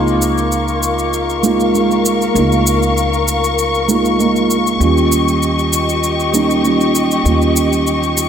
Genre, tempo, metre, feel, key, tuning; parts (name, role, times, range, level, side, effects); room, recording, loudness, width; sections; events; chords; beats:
organic downtempo; 98 BPM; 4/4; straight; A4 = 440 Hz
felt-muted upright piano; accompaniment; 0.0-8.3 s; G3 to F4; -15 LUFS; right 3 dB; digital delay
dark studio string section; sustained chords; 0.0-8.3 s; G4 to Db6; -18 LUFS; left 4 dB
santur; arpeggios; 0.0-4.1 s; Bb3 to Bb4; -26 LUFS; left 3 dB; digital delay
upright bass; bass; 0.0-8.3 s; Db2 to Eb2; -20 LUFS; equal
shaker; drums; 0.1-8.3 s; -22 LUFS; right 1 dB
moderate echo chamber reverb, RT60 2.4 s; -12 LUFS; side -8 dB against mid
0.0-8.3 A section
0.0 Db6; 4.8 Eb7
0.52 1.13 1.75 | 2.36 2.97 3.58 4.20 | 4.81 5.42 6.03 6.64 | 7.26 7.87